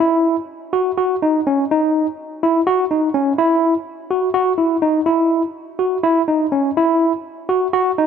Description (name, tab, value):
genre	progressive instrumental, progressive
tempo	249 BPM (eighths)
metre	7/8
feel	straight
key	unclear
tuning	A4 = 440 Hz
part	barky tine electric piano	solo	0.0-8.1 s	C#4 to F#4	-15 LUFS	equal	medium stereo tremolo
room	light reverb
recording	none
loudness	-15 LUFS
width	side -7 dB against mid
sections	0.0-8.1 A section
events	none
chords	none